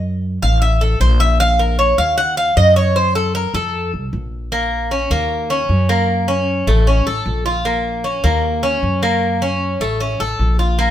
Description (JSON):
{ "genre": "latin, Cuban son and guajira", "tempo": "154 BPM", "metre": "4/4", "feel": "straight", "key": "Bb minor from 4.5 s", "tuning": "A4 = 440 Hz", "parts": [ { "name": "upright bass", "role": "bass", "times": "0.0-10.9 s", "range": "A1 to Gb2", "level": "-18 LUFS", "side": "equal", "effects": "none" }, { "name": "Cuban tres", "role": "arpeggios", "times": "0.4-10.9 s", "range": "A3 to Gb5", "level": "-17 LUFS", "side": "equal", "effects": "none" } ], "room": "moderate stone room reverb, RT60 1.1 s", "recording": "band playing live in one room", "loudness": "-14 LUFS", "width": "side -11 dB against mid", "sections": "0.0-4.5 A section; 4.5-10.9 B section", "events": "Cuban tres solo 0.0-4.5", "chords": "0.0 Gbmmaj7; 0.6 Am; 1.4 Bbmadd11; 2.2 Ebm; 3.0 Fadd11; 3.7 F5; 4.5 Bbm; 5.3 Ebm7; 6.1 Gb; 6.9 A; 7.7 Bbm; 8.4 Ebm7; 9.2 Gb; 10.0 A" }